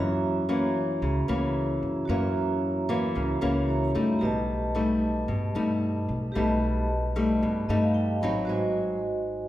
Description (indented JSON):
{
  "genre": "bossa nova",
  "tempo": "112 BPM",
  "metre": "4/4",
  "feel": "straight",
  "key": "unclear",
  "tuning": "A4 = 441 Hz",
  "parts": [
    { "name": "nylon-string guitar", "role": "accompaniment", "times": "0.0-9.5 s", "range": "F#2 to D#4", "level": "-27 LUFS", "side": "left 1 dB", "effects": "none" },
    { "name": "vibraphone with medium hard mallets", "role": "accompaniment", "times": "0.0-9.5 s", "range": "F#4 to B5", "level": "-30 LUFS", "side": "right 2 dB", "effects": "none" },
    { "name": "upright bass", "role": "bass", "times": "0.0-9.5 s", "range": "G#1 to G2", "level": "-31 LUFS", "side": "equal", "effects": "none" }
  ],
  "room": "wet recital hall reverb, RT60 1.8 s",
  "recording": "recorded in a church or concert hall",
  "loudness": "-24 LUFS",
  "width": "side -14 dB against mid",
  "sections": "0.0-9.5 A section",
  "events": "vibraphone fill 7.4-8.5",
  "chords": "0.0 F#7; 4.2 B7b13; 8.5 G#7",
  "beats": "0.49 1.02 1.55 | 2.09 2.62 3.15 3.69 | 4.22 4.75 5.29 5.82 | 6.36 6.89 7.42 7.96 | 8.49 9.02"
}